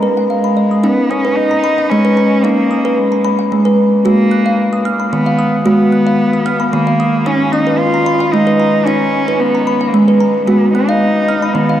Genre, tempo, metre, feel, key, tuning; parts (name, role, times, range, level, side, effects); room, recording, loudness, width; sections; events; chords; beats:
world meditative, meditative tuned percussion; 112 BPM; 3/4; straight; A4 = 439 Hz
rich cello; melody; 0.0-11.8 s; Ab3 to F4; -15 LUFS; equal; diffuse ambient delay
kalimba; arpeggios; 0.0-11.8 s; Eb3 to Gb6; -12 LUFS; equal
wet cathedral reverb, RT60 7.2 s; worn, warbling old tape, cassette tape, warbly pitch drift; -10 LUFS; side -11 dB against mid
0.8-11.8 A section
0.0 Db; 0.8 Db5; 4.1 Abm; 7.3 Db5; 10.5 Abm
0.30 | 0.84 1.38 1.91 | 2.45 2.98 3.52 | 4.05 4.59 5.12 | 5.66 6.19 6.73 | 7.26 7.80 8.34 | 8.87 9.41 9.94 | 10.48 11.01 11.55